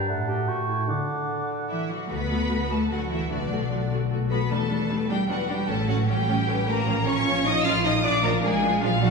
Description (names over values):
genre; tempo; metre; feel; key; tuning
classical; 152 BPM; 3/4; rubato; D major; A4 = 438 Hz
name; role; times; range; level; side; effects
bright clarinet; second line; 0.0-1.9 s; D4 to G4; -34 LUFS; left 2 dB; none
concert flute; second line; 0.0-1.9 s; A5 to D6; -33 LUFS; right 1 dB; none
warm oboe; second line; 0.0-1.9 s; F#5 to G5; -32 LUFS; equal; none
warm bassoon; accompaniment; 0.0-1.9 s; D3 to A3; -34 LUFS; right 3 dB; none
concert harp; arpeggios; 0.0-9.1 s; G2 to D5; -29 LUFS; left 1 dB; none
clear symphonic violin section; melody; 1.7-9.1 s; D5 to E#6; -29 LUFS; left 2 dB; none
rich symphonic violin section; second line; 1.7-9.1 s; D4 to E#5; -30 LUFS; left 2 dB; none
rich symphonic cello section; bass; 1.7-9.1 s; D3 to E#4; -28 LUFS; right 1 dB; none
rich symphonic viola section; accompaniment; 2.1-9.1 s; E#3 to F#4; -30 LUFS; equal; none
rich symphonic double bass section; bass; 2.1-9.1 s; A1 to E2; -29 LUFS; right 2 dB; none
room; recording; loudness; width
wet recital hall reverb, RT60 1.6 s; recorded in a church or concert hall, studio ambience; -22 LUFS; side -4 dB against mid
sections
0.0-2.1 A section; 2.1-9.1 B section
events
none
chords
0.1 D/A; 0.5 A7; 0.9 D; 3.3 Bm7; 4.5 Em7; 5.7 A13; 6.9 A#m; 8.0 A#7